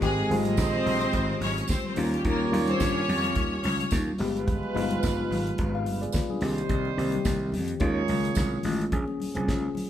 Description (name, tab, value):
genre	disco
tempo	108 BPM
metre	4/4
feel	swing 56% on 16ths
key	unclear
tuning	A4 = 440 Hz
part	bright studio string section	second line	0.0-3.9 s	G3 to Db5	-29 LUFS	left 1 dB	none
part	tine electric piano	accompaniment	0.0-9.9 s	Eb3 to F5	-29 LUFS	left 2 dB	slow stereo tremolo
part	warm horn section	stabs	0.0-8.6 s	G3 to Eb5	-33 LUFS	right 6 dB	none
part	gritty slap bass	bass	0.0-9.7 s	G1 to G2	-31 LUFS	equal	overdrive
part	damped 70s drum kit	drums	0.0-9.9 s	hi-hat, kick drum, snare drum	-31 LUFS	equal	none
part	congas	percussion	0.0-9.9 s	none	-36 LUFS	equal	none
part	tambourine	percussion	0.6-8.5 s	none	-43 LUFS	right 6 dB	none
room	wet large studio reverb, RT60 1.2 s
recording	band playing live in one room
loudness	-24 LUFS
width	side -11 dB against mid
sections	0.0-8.9 A section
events	none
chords	0.0 Abmaj7; 2.0 Eb9; 4.2 G7b9; 6.4 Cm7; 7.8 Eb9sus4; 8.9 Bbm7